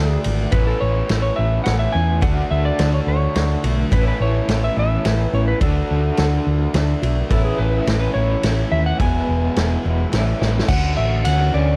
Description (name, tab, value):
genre	folk rock and heartland rock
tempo	106 BPM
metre	3/4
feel	straight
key	A major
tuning	A4 = 440 Hz
part	clean lap steel guitar	melody	0.0-11.8 s	G#4 to G#5	-27 LUFS	equal	analog delay
part	picked steel-string acoustic guitar	accompaniment	0.0-11.8 s	E2 to F#4	-31 LUFS	equal	none
part	crunchy overdriven guitar	riff	0.0-11.8 s	E2 to F#4	-28 LUFS	equal	tremolo
part	hollow-body short-scale fingered electric bass	bass	0.0-11.8 s	E1 to E2	-22 LUFS	equal	none
part	vintage drum kit	drums	0.2-11.4 s	crash cymbal, kick drum, ride cymbal, snare drum	-26 LUFS	equal	none
part	tonewheel organ	sustained chords	10.4-11.8 s	G3 to C#5	-38 LUFS	equal	none
part	tambourine	percussion	10.7-11.4 s	none	-43 LUFS	equal	none
room	small room reverb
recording	dark, warm production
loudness	-19 LUFS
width	mono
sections	0.0-10.7 A section; 10.7-11.8 B section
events	drum fill 10.4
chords	0.0 D; 0.5 Aadd9; 2.2 D; 3.9 Aadd9; 5.6 D; 7.3 Aadd9; 9.0 Eadd9; 10.1 A7; 10.7 Dmaj7